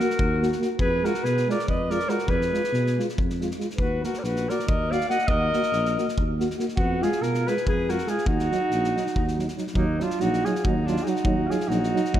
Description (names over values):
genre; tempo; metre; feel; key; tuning
balkan folk, Balkan brass band; 281 BPM (eighths); 7/8; straight; Eb harmonic minor; A4 = 440 Hz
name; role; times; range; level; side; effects
mellow flugelhorn; melody; 0.0-12.2 s; Eb4 to Gb5; -27 LUFS; right 1 dB; none
clear alto saxophone; second line; 0.0-12.2 s; Bb3 to Eb5; -32 LUFS; left 1 dB; none
dark euphonium; accompaniment; 0.0-12.2 s; Gb3 to Bb3; -31 LUFS; right 4 dB; none
mellow French horn; accompaniment; 0.0-12.2 s; Eb4 to Gb4; -33 LUFS; left 3 dB; none
loose indie drum kit; percussion; 0.0-12.2 s; kick drum, snare drum; -29 LUFS; equal; none
dark tuba; bass; 0.2-12.2 s; Bb1 to Cb3; -28 LUFS; equal; none
room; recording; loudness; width
moderate concert hall reverb, RT60 2.3 s; none; -22 LUFS; side -11 dB against mid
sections
0.0-9.8 A section; 9.8-12.2 A section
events
none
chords
0.0 Ebm; 0.8 Fdim; 3.8 Ebm; 6.8 Fdim; 8.3 Ebm